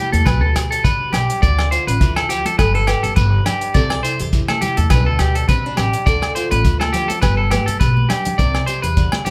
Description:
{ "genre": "highlife guitar band", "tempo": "103 BPM", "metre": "4/4", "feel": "swing 55% on 16ths", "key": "unclear", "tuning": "A4 = 438 Hz", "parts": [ { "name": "nylon-string guitar", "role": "accompaniment", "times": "0.0-9.3 s", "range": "B2 to C5", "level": "-28 LUFS", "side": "equal", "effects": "none" }, { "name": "electric guitar at the edge of break-up", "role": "arpeggios", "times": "0.0-9.3 s", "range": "G4 to D5", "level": "-23 LUFS", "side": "equal", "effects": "none" }, { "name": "upright bass", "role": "bass", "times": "0.1-9.1 s", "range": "G1 to E2", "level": "-21 LUFS", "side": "equal", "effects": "none" }, { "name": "damped 70s drum kit", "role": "drums", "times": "0.1-9.3 s", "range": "hi-hat, kick drum, rim click", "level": "-22 LUFS", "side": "equal", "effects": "none" }, { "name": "congas", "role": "percussion", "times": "0.1-9.3 s", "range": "none", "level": "-29 LUFS", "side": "equal", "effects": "none" }, { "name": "agogo bells", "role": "percussion", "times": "0.3-9.3 s", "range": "none", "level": "-30 LUFS", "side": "equal", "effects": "none" }, { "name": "shekere", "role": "percussion", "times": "0.3-9.3 s", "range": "none", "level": "-31 LUFS", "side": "equal", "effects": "none" } ], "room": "light reverb", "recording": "band playing live in one room", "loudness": "-17 LUFS", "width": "mono", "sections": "0.0-9.3 A section", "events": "drum fill 8.0-8.4", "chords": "0.3 G/B; 1.4 Dm; 2.6 G; 3.7 C; 4.9 G/B; 6.1 Dm; 7.2 G; 8.4 C" }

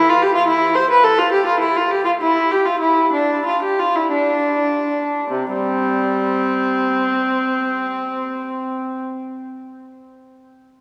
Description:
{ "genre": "classical, baroque-style suite movement for unaccompanied viola", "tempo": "48-74 BPM (dotted quarters)", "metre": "6/8", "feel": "rubato", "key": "C major", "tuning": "A4 = 439 Hz", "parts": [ { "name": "rich viola", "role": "solo", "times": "0.0-9.0 s", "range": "C3 to C5", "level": "-18 LUFS", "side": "equal", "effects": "none" } ], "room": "wet cathedral reverb, RT60 4.4 s", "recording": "recorded in a church or concert hall", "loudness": "-18 LUFS", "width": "mono", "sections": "0.0-5.3 A section; 5.3-9.8 B section", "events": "slowing down 0.5-5.3", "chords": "none" }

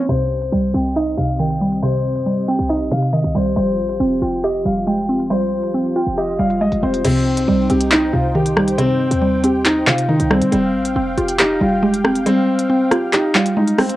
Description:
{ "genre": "hip hop, drill", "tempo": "138 BPM", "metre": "4/4", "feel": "half-time", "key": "C minor", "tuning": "A4 = 440 Hz", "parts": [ { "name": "warm upright piano", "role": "melody", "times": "0.0-14.0 s", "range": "C4 to G5", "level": "-20 LUFS", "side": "left 2 dB", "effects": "low-pass filter, cassette tape, analog delay" }, { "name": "mallet-like synth pluck", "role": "accompaniment", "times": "0.0-14.0 s", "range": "C3 to G4", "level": "-18 LUFS", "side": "right 1 dB", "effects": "chorus, low-pass filter" }, { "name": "warm analog pad", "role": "sustained chords", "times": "0.0-14.0 s", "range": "F3 to G5", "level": "-28 LUFS", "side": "equal", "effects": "chorus" }, { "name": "short 808-style bass", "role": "bass", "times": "0.1-12.3 s", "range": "F1 to Eb3", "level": "-25 LUFS", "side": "equal", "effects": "none" }, { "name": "drill drum kit", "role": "drums", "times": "0.1-14.0 s", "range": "crash cymbal, handclaps, hi-hat, rim click", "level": "-19 LUFS", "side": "equal", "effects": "cassette tape" } ], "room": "light reverb", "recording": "home recording on cassette, low-pass filter", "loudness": "-15 LUFS", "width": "side -15 dB against mid", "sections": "0.1-7.0 A section; 7.0-14.0 B section", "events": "filter sweep 0.1-7.0; kick muted 12.3-14.0", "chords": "0.1 Cm; 3.6 Fmadd9; 7.0 Cm; 10.5 Fmadd9" }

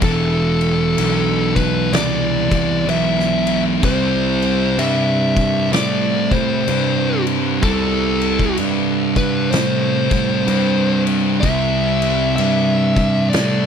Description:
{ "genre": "stoner and doom metal", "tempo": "63 BPM", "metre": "4/4", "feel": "swing 62% on 8ths", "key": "unclear", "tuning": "A4 = 440 Hz", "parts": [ { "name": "fuzz lead guitar", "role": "melody", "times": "0.0-13.7 s", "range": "A4 to E5", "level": "-21 LUFS", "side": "left 1 dB", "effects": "distortion, tape echo" }, { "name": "thick fuzz guitar", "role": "riff", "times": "0.0-13.7 s", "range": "E2 to C4", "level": "-22 LUFS", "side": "left 13 dB", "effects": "distortion" }, { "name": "thick fuzz guitar", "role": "riff", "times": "0.0-13.7 s", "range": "E2 to C4", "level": "-20 LUFS", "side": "right 11 dB", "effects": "distortion" }, { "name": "fuzz picked electric bass", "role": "bass", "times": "0.0-13.7 s", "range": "E1 to A2", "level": "-22 LUFS", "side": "left 1 dB", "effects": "overdrive" }, { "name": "oversized low-tuned drum kit", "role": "drums", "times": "0.0-13.6 s", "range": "crash cymbal, kick drum, snare drum", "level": "-24 LUFS", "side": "left 1 dB", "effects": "none" } ], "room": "little or no reverb", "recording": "dry, close 1970s-style studio recording", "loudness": "-15 LUFS", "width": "side -7 dB against mid", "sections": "0.0-13.7 A section", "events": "none", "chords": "0.0 E5; 3.8 C" }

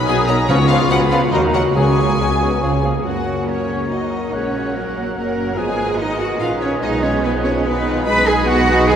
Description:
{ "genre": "quick classical-period movement for symphony orchestra", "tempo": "144 BPM", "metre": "3/4", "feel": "straight", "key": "F# major", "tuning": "A4 = 442 Hz", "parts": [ { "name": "warm chamber violin section", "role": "melody", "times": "0.0-9.0 s", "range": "A#4 to B5", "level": "-26 LUFS", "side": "left 3 dB", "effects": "none" }, { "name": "bright concert flute", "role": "second line", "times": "0.0-8.9 s", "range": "A#4 to D#6", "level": "-27 LUFS", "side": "left 1 dB", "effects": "none" }, { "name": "clear symphonic violin section", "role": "second line", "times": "0.0-9.0 s", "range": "A#4 to B5", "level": "-28 LUFS", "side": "left 2 dB", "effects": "none" }, { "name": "warm clarinet", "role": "second line", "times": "0.0-9.0 s", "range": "C#4 to B4", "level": "-27 LUFS", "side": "left 1 dB", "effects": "none" }, { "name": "rich chamber viola section", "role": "accompaniment", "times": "0.0-9.0 s", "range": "F#3 to A#4", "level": "-25 LUFS", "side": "right 1 dB", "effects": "none" }, { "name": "warm French horn section", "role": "sustained chords", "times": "0.0-9.0 s", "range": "D#3 to F#4", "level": "-24 LUFS", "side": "left 3 dB", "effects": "none" }, { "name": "rich chamber double bass section", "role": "bass", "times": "0.0-9.0 s", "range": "F#1 to F#2", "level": "-24 LUFS", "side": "right 2 dB", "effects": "none" }, { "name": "warm chamber cello section", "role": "bass", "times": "0.0-9.0 s", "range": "B2 to B4", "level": "-20 LUFS", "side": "right 2 dB", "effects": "none" }, { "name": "mellow cor anglais", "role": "second line", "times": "0.1-9.0 s", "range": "G#4 to F#5", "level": "-28 LUFS", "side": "right 1 dB", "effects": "none" }, { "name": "warm bassoon", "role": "accompaniment", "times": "0.1-9.0 s", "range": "E#3 to G#3", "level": "-25 LUFS", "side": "right 1 dB", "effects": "none" }, { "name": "timpani", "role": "percussion", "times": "0.5-2.4 s", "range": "C#3", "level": "-25 LUFS", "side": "equal", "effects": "none" } ], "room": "wet cathedral reverb, RT60 5.0 s", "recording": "none", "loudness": "-15 LUFS", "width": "side -8 dB against mid", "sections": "0.0-3.1 A section; 3.1-9.0 B section", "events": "none", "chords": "0.5 C#7; 1.3 D#m; 1.8 C#sus4; 2.6 C#; 3.1 F#; 4.3 F#/A#; 5.6 G#m; 6.8 G#m/B" }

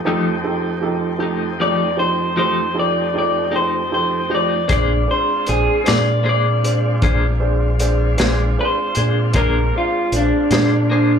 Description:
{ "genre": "slow blues", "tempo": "52 BPM (dotted quarters)", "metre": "12/8", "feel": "straight", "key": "unclear", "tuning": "A4 = 438 Hz", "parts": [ { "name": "tonewheel organ", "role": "sustained chords", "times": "0.0-11.2 s", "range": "F2 to G4", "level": "-27 LUFS", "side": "left 1 dB", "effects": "slow rotary speaker" }, { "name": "clean electric guitar", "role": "accompaniment", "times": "0.1-11.1 s", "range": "F3 to C5", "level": "-23 LUFS", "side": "left 5 dB", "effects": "tremolo, slapback echo" }, { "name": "warm upright piano", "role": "accompaniment", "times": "0.1-11.2 s", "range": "F3 to C5", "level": "-23 LUFS", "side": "right 4 dB", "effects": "slapback echo" }, { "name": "electric guitar through a small old amp", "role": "melody", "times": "1.6-11.2 s", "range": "D4 to D5", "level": "-19 LUFS", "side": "left 1 dB", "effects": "slapback echo" }, { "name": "fingered electric bass", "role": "bass", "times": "4.7-11.2 s", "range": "Bb1 to Bb2", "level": "-18 LUFS", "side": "equal", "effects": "none" }, { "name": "crunchy breakbeat drum kit", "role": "drums", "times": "4.7-10.7 s", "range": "hi-hat, kick drum, snare drum", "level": "-21 LUFS", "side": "equal", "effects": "none" } ], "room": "studio reverb", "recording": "live gig heard through the venue's PA, club reverb", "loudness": "-15 LUFS", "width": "side -7 dB against mid", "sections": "0.0-11.2 A section", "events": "none", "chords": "0.0 F9; 4.7 Bb9" }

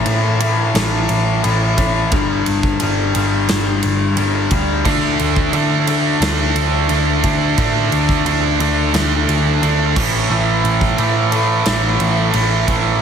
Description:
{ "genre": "hard rock", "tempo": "88 BPM", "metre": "4/4", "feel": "straight", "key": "unclear", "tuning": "A4 = 443 Hz", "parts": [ { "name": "distorted electric guitar", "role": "riff", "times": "0.0-13.0 s", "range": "G2 to D4", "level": "-18 LUFS", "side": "left 4 dB", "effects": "distortion" }, { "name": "hollow-body short-scale picked electric bass", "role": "bass", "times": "0.0-13.0 s", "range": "G1 to D3", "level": "-19 LUFS", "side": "equal", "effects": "none" }, { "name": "huge arena drum kit", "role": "drums", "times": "0.1-12.8 s", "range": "crash cymbal, kick drum, ride cymbal, snare drum", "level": "-21 LUFS", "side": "right 1 dB", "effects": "none" }, { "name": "scooped high-gain guitar", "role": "riff", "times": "4.8-13.0 s", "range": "A2 to D4", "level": "-19 LUFS", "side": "right 11 dB", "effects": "distortion" } ], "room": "light reverb", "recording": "heavily compressed radio sound", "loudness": "-14 LUFS", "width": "side -7 dB against mid", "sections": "0.0-13.0 A section", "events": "none", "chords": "0.0 A5; 2.1 G5; 4.9 D5; 10.0 A5" }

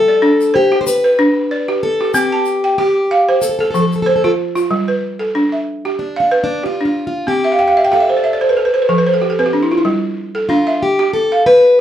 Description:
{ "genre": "west african traditional, West African string and xylophone music", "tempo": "93 BPM", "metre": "4/4", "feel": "swing 54% on 16ths", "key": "G mixolydian", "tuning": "A4 = 439 Hz", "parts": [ { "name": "picked plugged-in steel-string acoustic guitar", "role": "melody", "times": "0.0-11.8 s", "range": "D4 to C5", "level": "-15 LUFS", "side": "left 2 dB", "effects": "none" }, { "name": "balafon", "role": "arpeggios", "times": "0.0-11.8 s", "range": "F3 to A5", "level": "-14 LUFS", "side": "right 2 dB", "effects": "none" }, { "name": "tube shaker", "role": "percussion", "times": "0.4-4.6 s", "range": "none", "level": "-28 LUFS", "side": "left 4 dB", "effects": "none" } ], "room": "wet studio ambience, RT60 0.5 s", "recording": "heard from further back in the room", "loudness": "-12 LUFS", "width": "side -10 dB against mid", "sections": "0.0-4.7 A section; 4.7-11.8 B section", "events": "balafon fill 7.4-9.8", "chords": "0.0 G; 2.1 C5; 3.4 F; 4.7 G; 7.3 C5; 8.6 F; 9.8 G" }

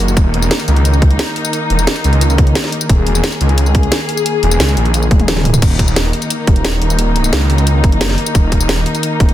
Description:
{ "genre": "dark technical drum and bass", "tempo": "176 BPM", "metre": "4/4", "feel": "straight", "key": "unclear", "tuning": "A4 = 440 Hz", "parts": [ { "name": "muted studio string section", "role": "sustained chords", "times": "0.0-9.3 s", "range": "Eb3 to Ab4", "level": "-19 LUFS", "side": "left 2 dB", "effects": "sidechain pumping" }, { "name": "wide detuned saw bass", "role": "bass", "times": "0.0-9.3 s", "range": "Eb1 to Db2", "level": "-14 LUFS", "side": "equal", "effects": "chorus" }, { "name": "drum and bass drum kit", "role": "drums", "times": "0.0-9.3 s", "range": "crash cymbal, hi-hat, snare drum, tambourine, toms", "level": "-18 LUFS", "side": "equal", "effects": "studio reverb" }, { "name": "electronic kick drum", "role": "drums", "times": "0.2-9.3 s", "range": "none", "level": "-11 LUFS", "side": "equal", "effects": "overdrive, studio reverb" } ], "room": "light reverb", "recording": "dense, heavily limited modern master", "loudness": "-11 LUFS", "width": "side -13 dB against mid", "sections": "0.0-5.6 A section; 5.6-9.3 A section", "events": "drop 0.0-5.6, 5.6-9.3; drum fill 5.1-5.6", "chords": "0.0 Eb5" }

